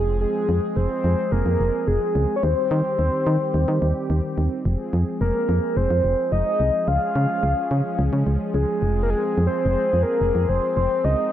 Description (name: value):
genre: pop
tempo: 108 BPM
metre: 4/4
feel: straight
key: F minor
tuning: A4 = 440 Hz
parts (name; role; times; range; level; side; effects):
- soft octave-layered synth lead; melody; 0.0-11.3 s; Ab4 to F5; -23 LUFS; left 1 dB; chorus, phaser, slapback echo
- brassy analog pad; sustained chords; 0.0-11.3 s; Eb3 to Ab4; -28 LUFS; right 1 dB; chorus
- solid FM bass; bass; 0.0-11.2 s; F1 to Eb3; -21 LUFS; equal; none
room: light reverb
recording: none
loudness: -19 LUFS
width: side -11 dB against mid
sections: 0.0-11.3 A section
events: none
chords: 0.0 Fm; 2.4 Cm/Eb; 4.7 Fm; 6.9 Db; 8.8 Fm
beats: | 0.21 0.77 1.32 1.88 | 2.43 2.99 3.54 4.10 | 4.66 5.21 5.77 6.32 | 6.88 7.43 7.99 8.54 | 9.10 9.65 10.21 10.77 | 11.32